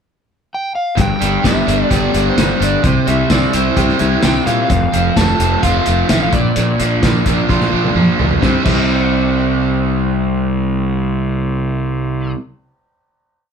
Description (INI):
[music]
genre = classic rock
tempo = 129 BPM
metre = 4/4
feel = straight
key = C mixolydian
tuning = A4 = 440 Hz
[part]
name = overdriven slide guitar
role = melody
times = 0.5-12.3 s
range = C5 to A5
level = -22 LUFS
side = left 1 dB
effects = none
[part]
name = crunchy overdriven guitar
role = riff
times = 1.0-12.4 s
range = F2 to E4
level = -20 LUFS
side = left 10 dB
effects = none
[part]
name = crunchy overdriven guitar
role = riff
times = 1.0-12.4 s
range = F2 to G4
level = -17 LUFS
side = right 8 dB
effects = none
[part]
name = fuzz fingered electric bass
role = bass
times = 1.0-12.3 s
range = F1 to Bb2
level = -19 LUFS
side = left 1 dB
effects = overdrive
[part]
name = cloth-damped thuddy drum kit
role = drums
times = 1.0-8.8 s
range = crash cymbal, hi-hat, kick drum, snare drum, tambourine, toms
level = -18 LUFS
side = left 1 dB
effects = none
[sound]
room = moderate studio reverb, RT60 0.5 s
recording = band playing live in one room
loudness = -12 LUFS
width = side -7 dB against mid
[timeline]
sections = 0.0-1.0 pickup bar; 1.0-8.4 verse; 8.4-12.1 final chord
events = drum fill 7.5-8.4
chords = 0.0 N.C.; 1.0 G; 2.8 C; 4.7 F; 6.3 Bb; 8.4 C5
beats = 0.04 0.50 | 0.97 1.43 1.90 2.37 | 2.83 3.30 3.77 4.23 | 4.70 5.16 5.63 6.10 | 6.56 7.03 7.49 7.96 | 8.42 8.89 9.35 9.81 | 10.28 10.74 11.20 11.67